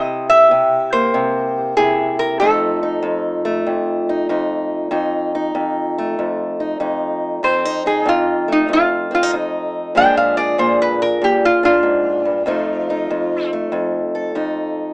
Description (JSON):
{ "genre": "acoustic country blues, solo or duo", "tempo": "95 BPM", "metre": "4/4", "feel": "swing 67% on 8ths", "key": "F mixolydian", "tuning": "A4 = 440 Hz", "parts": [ { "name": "metal-body resonator slide guitar", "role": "melody", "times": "0.0-13.5 s", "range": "Eb4 to G5", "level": "-15 LUFS", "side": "equal", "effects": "none" }, { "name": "fingerpicked acoustic archtop guitar", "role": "accompaniment", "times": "0.0-14.9 s", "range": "F2 to A4", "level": "-18 LUFS", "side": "equal", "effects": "none" } ], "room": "light reverb", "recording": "rough home demo mix, small speaker sound", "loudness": "-15 LUFS", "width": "side -30 dB against mid", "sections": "0.0-7.4 A section; 7.4-14.9 B section", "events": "resonator guitar played with a steel bar solo 7.4-14.9", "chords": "0.0 C7; 2.4 F7; 10.0 Bb7; 12.5 F7" }